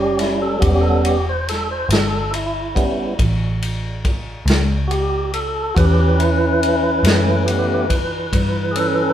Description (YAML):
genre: slow blues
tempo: 47 BPM (dotted quarters)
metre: 12/8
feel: straight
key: A mixolydian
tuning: A4 = 440 Hz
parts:
  - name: tonewheel organ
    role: sustained chords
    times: 0.0-9.1 s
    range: E3 to C5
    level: -18 LUFS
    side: right 1 dB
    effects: slow rotary speaker
  - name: vintage muted fingered electric bass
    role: bass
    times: 0.0-9.1 s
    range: E1 to G2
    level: -20 LUFS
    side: equal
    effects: none
  - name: vintage drum kit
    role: drums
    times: 0.2-8.9 s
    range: kick drum, ride cymbal, snare drum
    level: -22 LUFS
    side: equal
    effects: none
room: moderate stone room reverb, RT60 1.0 s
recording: band playing live in one room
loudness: -16 LUFS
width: side -10 dB against mid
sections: 0.0-9.1 A section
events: tonewheel organ solo 0.0-9.1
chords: 0.0 A9